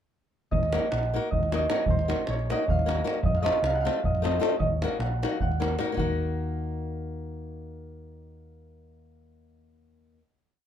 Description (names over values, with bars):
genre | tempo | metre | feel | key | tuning
balkan folk, Balkan wedding band | 305 BPM (eighths) | 7/8 | straight | Eb dorian sharp4 | A4 = 444 Hz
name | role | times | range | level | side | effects
Celtic harp | melody | 0.5-10.2 s | C5 to Gb5 | -29 LUFS | right 2 dB | none
hollow-body short-scale fingered electric bass | bass | 0.5-10.2 s | Bb1 to F2 | -30 LUFS | equal | none
davul | percussion | 0.5-6.2 s | none | -30 LUFS | right 1 dB | none
flamenco guitar | accompaniment | 0.7-10.2 s | A3 to Bb4 | -31 LUFS | left 5 dB | none
room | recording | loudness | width
light reverb | minimal, uncompressed stereo recording | -24 LUFS | side -9 dB against mid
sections
0.5-6.0 A section; 6.0-8.7 final chord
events
none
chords
0.5 Ebm; 3.2 F; 4.6 Ebm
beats
| 0.52 0.71 0.90 1.09 1.29 1.48 1.67 | 1.87 2.06 2.25 2.45 2.64 2.84 3.03 | 3.23 3.42 3.62 3.81 4.01 4.20 4.40 | 4.59 4.79 4.99 5.19 5.38 5.58 5.78 | 5.98 6.17 6.37 6.57 6.77 6.97 7.17 | 7.36 7.56 7.76 7.96 8.15 8.35 8.55